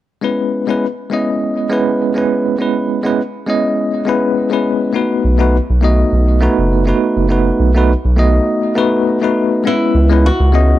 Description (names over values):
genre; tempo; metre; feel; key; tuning
sunset chillout; 102 BPM; 4/4; swing 54% on 16ths; C# minor; A4 = 441 Hz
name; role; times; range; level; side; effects
bell-like tine electric piano; accompaniment; 0.2-10.8 s; G#3 to D#5; -14 LUFS; moving between left 4 dB and right 5 dB; medium stereo tremolo, auto-pan, tape echo
round analog bass; bass; 5.2-10.7 s; F#1 to C#2; -12 LUFS; equal; tube saturation
flamenco guitar; melody; 9.7-10.8 s; E4 to F#4; -16 LUFS; right 1 dB; none
room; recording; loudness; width
light reverb, studio ambience; dry, gritty hardware recording, cassette tape; -12 LUFS; side -14 dB against mid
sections
0.2-9.7 A section; 9.7-10.8 B section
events
break 8.5-9.7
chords
0.2 C#m7; 4.9 B7; 9.7 C#m7